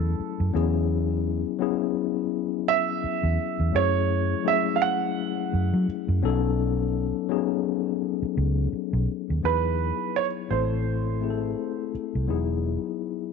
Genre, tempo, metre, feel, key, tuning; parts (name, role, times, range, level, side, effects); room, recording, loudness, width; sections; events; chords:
lush 1970s-style soul; 84 BPM; 4/4; swing 58% on 16ths; E major; A4 = 437 Hz
dark baby grand piano; melody; 0.0-11.9 s; A4 to F#5; -26 LUFS; right 13 dB
mellow tine electric piano; accompaniment; 0.0-13.3 s; F#3 to A4; -27 LUFS; left 16 dB; medium stereo tremolo
vintage muted fingered electric bass; bass; 0.0-12.8 s; E1 to F#3; -25 LUFS; right 1 dB
light reverb, small room ambience; 1960s-style stereo with parts hard left and right, nothing above 7.9 kHz; -23 LUFS; side -5 dB against mid
0.0-9.4 A section; 9.4-13.3 B section
0.0 F#m7; 0.6 E6; 3.8 F#m7; 6.2 B7; 9.4 Emaj7; 10.5 Am; 12.3 Emaj7